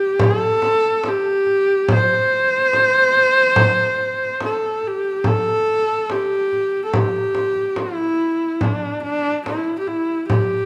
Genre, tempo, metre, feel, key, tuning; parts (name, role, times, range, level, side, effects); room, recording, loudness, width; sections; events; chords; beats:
mongolian traditional, Mongolian folk; 71 BPM; 4/4; straight; A4 = 440 Hz
clear horsehead fiddle; melody; 0.0-10.7 s; D4 to C5; -19 LUFS; equal
frame drum; percussion; 0.2-10.5 s; -24 LUFS; equal
moderate recital hall reverb, RT60 1.5 s; -18 LUFS; mono
0.0-5.3 A section; 5.3-10.7 B section
0.21 1.05 | 1.89 2.73 3.57 4.41 | 5.25 6.09 6.93 7.77 | 8.61 9.44 10.28